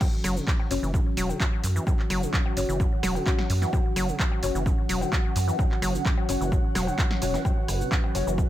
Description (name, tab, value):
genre	acid house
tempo	129 BPM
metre	4/4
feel	straight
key	unclear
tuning	A4 = 440 Hz
part	warm analog pad	sustained chords	0.0-8.5 s	F#3 to B4	-34 LUFS	left 1 dB	chorus, sidechain pumping
part	deep acid bass	riff	0.0-8.4 s	F#2 to F#3	-32 LUFS	equal	tube saturation, sidechain pumping, ping-pong delay
part	electronic kick drum	drums	0.0-8.5 s	none	-25 LUFS	equal	studio ambience
part	punchy analog drum machine	drums	0.0-8.5 s	cabasa, cowbell, crash cymbal, handclaps, hi-hat, rim click, snare drum	-32 LUFS	equal	studio ambience
part	deep dark ambient pad	texture	1.7-8.5 s	F#4 to B5	-34 LUFS	right 2 dB	chorus, built-in reverb, sidechain pumping
part	round analog bass	bass	0.2-8.4 s	E1 to F#2	-28 LUFS	equal	sidechain pumping
part	deep mellow chord stab	stabs	0.7-8.3 s	C#4 to C#5	-33 LUFS	left 6 dB	chorus, cassette tape, ping-pong delay
room	little or no reverb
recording	none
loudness	-23 LUFS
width	side -13 dB against mid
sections	0.0-8.5 A section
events	drop 0.0-8.5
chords	0.0 F#5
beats	| 0.01 0.47 0.94 1.40 | 1.87 2.33 2.80 3.27 | 3.73 4.20 4.66 5.12 | 5.59 6.05 6.52 6.99 | 7.45 7.92 8.38